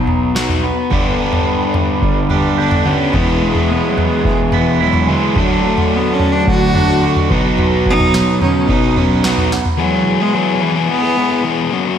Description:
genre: quiet-loud alternative rock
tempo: 108 BPM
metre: 4/4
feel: straight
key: unclear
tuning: A4 = 441 Hz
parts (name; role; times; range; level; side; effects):
- bright cello; melody; 0.0-11.7 s; E3 to F#4; -18 LUFS; right 1 dB; none
- twangy electric guitar; arpeggios; 0.0-9.8 s; E2 to G4; -23 LUFS; right 7 dB; phaser, slapback echo, analog delay
- crunchy overdriven guitar; riff; 0.0-12.0 s; G2 to G#4; -18 LUFS; left 7 dB; slapback echo
- fuzz fingered electric bass; bass; 0.0-9.6 s; E1 to B2; -20 LUFS; equal; overdrive
- booming analog drum machine; drums; 0.1-9.8 s; kick drum, snare drum, toms; -18 LUFS; equal; none
- overdriven semi-hollow guitar; riff; 0.9-9.5 s; G2 to G4; -20 LUFS; right 9 dB; slapback echo
room: moderate lush hall reverb, RT60 1.7 s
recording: big arena sound, vinyl crackle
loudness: -12 LUFS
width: side -8 dB against mid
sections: 0.0-9.8 A section; 9.8-12.0 B section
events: cello solo 0.0-9.8; drum fill 9.5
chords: 0.0 B; 0.9 G; 3.1 E; 5.4 D; 7.3 B; 9.8 E

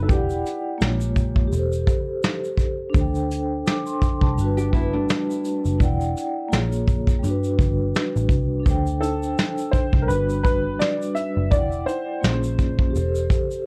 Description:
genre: lo-fi hip hop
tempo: 84 BPM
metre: 4/4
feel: swing 56% on 16ths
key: G major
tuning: A4 = 440 Hz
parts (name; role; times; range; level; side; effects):
- dark upright piano; melody; 0.0-1.5, 9.0-13.3 s; G4 to E5; -30 LUFS; equal; low-pass filter, analog delay
- vibraphone with soft mallets; accompaniment; 0.0-13.7 s; G3 to D6; -28 LUFS; equal; low-pass filter
- vintage muted picked electric bass; bass; 0.0-13.3 s; E1 to G2; -27 LUFS; equal; tube saturation
- vintage brush drum kit; drums; 0.1-13.7 s; hi-hat, kick drum, shaker, snare drum; -24 LUFS; equal; none
- nylon-string guitar; second line; 4.6-5.8 s; A3 to G4; -32 LUFS; equal; low-pass filter, analog delay
room: light reverb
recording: worn, warbling old tape, cassette tape, warbly pitch drift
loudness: -22 LUFS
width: mono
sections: 0.0-8.7 A section; 8.7-13.7 B section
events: none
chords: 0.1 Em9; 0.8 Bbm7; 1.5 Am7/E; 2.9 D7sus4; 4.4 Gmaj7; 5.8 Em9; 6.5 Bbm7; 7.2 Gmaj7; 8.7 D7sus4; 10.1 Gmaj7; 11.5 Em9; 12.2 Bbm7; 12.9 Am7/E

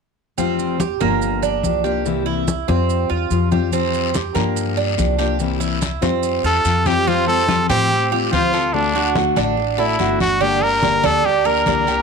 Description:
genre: latin, Cuban son and guajira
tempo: 144 BPM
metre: 4/4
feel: straight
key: F major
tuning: A4 = 440 Hz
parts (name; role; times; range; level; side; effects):
- fingerpicked steel-string acoustic guitar; accompaniment; 0.4-12.0 s; C3 to G4; -22 LUFS; left 14 dB; none
- Cuban tres; arpeggios; 0.4-12.0 s; Bb3 to D5; -21 LUFS; right 13 dB; slapback echo
- upright bass; bass; 0.4-12.0 s; F1 to A2; -24 LUFS; equal; none
- congas; percussion; 0.4-12.0 s; none; -25 LUFS; left 2 dB; none
- maracas; percussion; 0.4-7.1 s; none; -32 LUFS; right 17 dB; none
- guiro; percussion; 3.7-12.0 s; none; -30 LUFS; left 16 dB; none
- brilliant trumpet; melody; 6.5-12.0 s; D4 to Bb4; -18 LUFS; equal; slapback echo
room: light reverb, studio reverb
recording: 1960s-style stereo with parts hard left and right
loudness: -16 LUFS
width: side -5 dB against mid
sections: 0.4-7.1 A section; 7.1-12.0 B section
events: none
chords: 0.4 Fsus2; 1.2 Gm7; 2.1 C7; 2.9 Fsus2; 4.6 Gm7; 5.4 C7; 6.2 Fadd9; 8.7 D; 10.4 Gm

